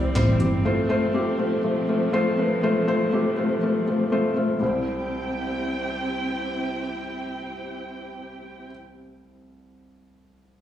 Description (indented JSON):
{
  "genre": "piano-driven pop",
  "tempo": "121 BPM",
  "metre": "4/4",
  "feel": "straight",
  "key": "C major",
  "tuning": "A4 = 440 Hz",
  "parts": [
    { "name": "felt-muted upright piano", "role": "accompaniment", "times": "0.0-10.6 s", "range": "C2 to D5", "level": "-24 LUFS", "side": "left 2 dB", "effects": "slapback echo" },
    { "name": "warm studio string section", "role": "sustained chords", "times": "0.0-8.7 s", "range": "C3 to G5", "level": "-29 LUFS", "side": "right 3 dB", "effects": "none" },
    { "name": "vintage muted fingered electric bass", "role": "bass", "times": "0.0-0.6 s", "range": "G1 to C2", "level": "-22 LUFS", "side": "equal", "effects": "none" },
    { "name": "80s electronic pad drums", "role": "drums", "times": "0.2-0.5 s", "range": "hi-hat, kick drum, snare drum", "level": "-28 LUFS", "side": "equal", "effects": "none" }
  ],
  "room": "moderate club reverb, RT60 0.7 s",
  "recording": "live gig heard through the venue's PA, recital hall reverb, small room reverb",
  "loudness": "-22 LUFS",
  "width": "side -11 dB against mid",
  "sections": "0.0-4.6 A section; 4.6-8.6 B section",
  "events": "none",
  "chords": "0.0 C; 0.6 F; 4.6 C",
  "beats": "0.15 | 0.65 1.15 1.64 2.14 | 2.63 3.13 3.62 4.12 | 4.62 5.11 5.61 6.11 | 6.60 7.10 7.59 8.09"
}